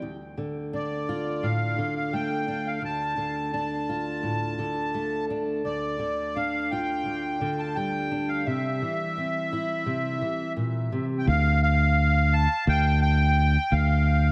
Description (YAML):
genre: indie folk with a building arrangement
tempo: 85 BPM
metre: 4/4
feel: straight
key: D minor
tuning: A4 = 440 Hz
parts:
  - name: fingerpicked steel-string acoustic guitar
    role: accompaniment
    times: 0.0-11.3 s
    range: D2 to F4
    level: -32 LUFS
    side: equal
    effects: none
  - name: accordion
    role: melody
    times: 0.7-14.3 s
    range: D5 to A5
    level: -30 LUFS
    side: equal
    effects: light tremolo tuning, tape echo
  - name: fingered electric bass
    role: bass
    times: 11.3-14.3 s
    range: D2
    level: -23 LUFS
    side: equal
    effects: none
room: moderate lush hall reverb, RT60 1.9 s, studio reverb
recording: dreamy mix soaked in reverb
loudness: -26 LUFS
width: mono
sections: 0.0-11.3 A section; 11.3-14.3 B section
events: none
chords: 0.0 Dm; 5.7 Dmadd11; 8.5 C; 11.3 G5/D